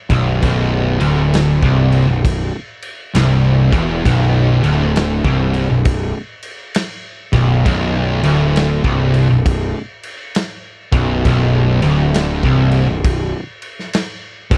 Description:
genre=stoner and doom metal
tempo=67 BPM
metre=4/4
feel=swing 64% on 8ths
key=B minor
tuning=A4 = 439 Hz
part: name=biting overdriven guitar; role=riff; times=0.1-14.6 s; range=B1 to E2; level=-24 LUFS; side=equal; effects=none
part: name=thick fuzz guitar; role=riff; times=0.1-14.6 s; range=B1 to E2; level=-21 LUFS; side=equal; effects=distortion
part: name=thick fuzz guitar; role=riff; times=0.1-14.6 s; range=B1 to E2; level=-20 LUFS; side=equal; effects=distortion
part: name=fuzz picked electric bass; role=bass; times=0.1-14.6 s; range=B0 to E1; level=-22 LUFS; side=equal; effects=overdrive
part: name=raw garage drum kit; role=drums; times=0.1-14.6 s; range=crash cymbal, kick drum, snare drum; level=-23 LUFS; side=equal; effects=none
room=little or no reverb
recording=dry, close 1970s-style studio recording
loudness=-15 LUFS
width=mono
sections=0.0-14.6 A section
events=none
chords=0.0 Bm

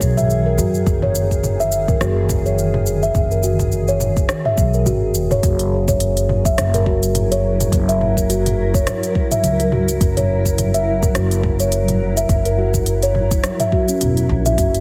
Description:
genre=organic downtempo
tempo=105 BPM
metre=4/4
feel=swing 57% on 16ths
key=F# mixolydian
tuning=A4 = 441 Hz
part: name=granular cloud pad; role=sustained chords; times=0.0-14.8 s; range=D#3 to A#4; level=-27 LUFS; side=equal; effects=built-in reverb, sidechain pumping
part: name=upright bass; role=bass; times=0.0-14.8 s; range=E1 to F#2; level=-22 LUFS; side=equal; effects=none
part: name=deep house drum kit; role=drums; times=0.0-14.8 s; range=hi-hat, rim click, shaker, toms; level=-26 LUFS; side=equal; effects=none
part: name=electronic kick drum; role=drums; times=0.0-14.7 s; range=none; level=-22 LUFS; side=equal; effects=none
part: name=steel tongue drum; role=arpeggios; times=0.2-14.7 s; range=C#4 to E5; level=-22 LUFS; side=equal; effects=digital delay
room=light reverb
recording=heavily compressed radio sound, multiband compression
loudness=-17 LUFS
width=mono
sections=0.0-5.4 A section; 5.4-14.8 B section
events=kick drops out 4.9-5.4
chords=0.0 C#sus2/F# (rootless); 5.4 F#7

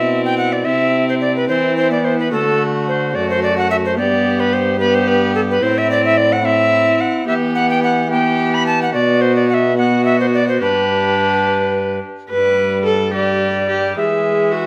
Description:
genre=classical, renaissance-style consort dance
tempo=72 BPM (dotted quarters)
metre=6/8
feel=straight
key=unclear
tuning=A4 = 436 Hz
part: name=alto recorder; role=melody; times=0.0-14.7 s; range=A4 to B5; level=-19 LUFS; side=equal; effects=none
part: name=warm viola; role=second line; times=0.0-14.7 s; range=E4 to B4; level=-23 LUFS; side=equal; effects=none
part: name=rich viola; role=accompaniment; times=0.0-14.7 s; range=G3 to D4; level=-23 LUFS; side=equal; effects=none
part: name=clear trombone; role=bass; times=0.0-14.7 s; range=F#2 to E3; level=-24 LUFS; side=equal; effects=none
room=wet stone room reverb, RT60 1.3 s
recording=none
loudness=-16 LUFS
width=mono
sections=0.0-12.3 A section; 12.3-14.7 B section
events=none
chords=0.0 Am (rootless); 0.7 C; 2.3 D; 4.0 G; 5.6 Am; 7.3 Em; 8.9 B5; 10.6 G; 14.0 E

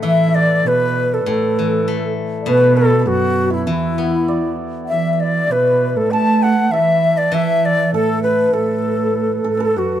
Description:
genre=chinese traditional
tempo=99 BPM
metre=2/4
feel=rubato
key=A zhi mode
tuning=A4 = 441 Hz
part: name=bright reedy xiao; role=melody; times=0.0-10.0 s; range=E4 to A5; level=-18 LUFS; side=equal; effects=none
part: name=dark cello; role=second line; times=0.0-10.0 s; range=E2 to A3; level=-20 LUFS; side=right 4 dB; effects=none
part: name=hammered dulcimer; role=second line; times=0.0-10.0 s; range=E4 to A5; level=-23 LUFS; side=right 2 dB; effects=none
part: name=steel-string zither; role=accompaniment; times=0.0-9.1 s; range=A2 to B3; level=-24 LUFS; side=left 4 dB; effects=none
part: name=low xiao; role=second line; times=0.1-10.0 s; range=E4 to A5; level=-22 LUFS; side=left 6 dB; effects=none
room=moderate studio reverb, RT60 0.9 s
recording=dark, warm production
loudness=-14 LUFS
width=side -11 dB against mid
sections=0.1-9.8 A section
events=none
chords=none

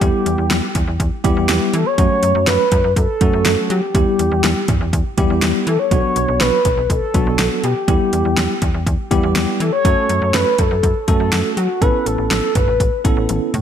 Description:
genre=synth-pop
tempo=122 BPM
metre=4/4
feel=straight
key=unclear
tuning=A4 = 439 Hz
part: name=mellow horn-like synth lead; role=melody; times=0.0-13.0 s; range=F#4 to C#5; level=-19 LUFS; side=equal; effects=chorus, phaser
part: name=bell-like tine electric piano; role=accompaniment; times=0.0-13.5 s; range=F#3 to A4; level=-21 LUFS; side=equal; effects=medium stereo tremolo
part: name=slap-like FM bass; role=bass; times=0.0-13.6 s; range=A1 to F#3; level=-20 LUFS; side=equal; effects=none
part: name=deep house drum kit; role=drums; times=0.0-13.6 s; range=hi-hat, kick drum, snare drum, toms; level=-19 LUFS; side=equal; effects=gated reverb
room=moderate lush hall reverb, RT60 1.9 s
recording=bright 1980s-style digital production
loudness=-14 LUFS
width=side -9 dB against mid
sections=0.0-13.6 A section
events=drum fill 13.3-13.6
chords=0.0 Em; 2.0 F#m; 3.9 Em; 5.9 Bm; 7.9 Em; 9.8 F#m; 11.8 Aadd9

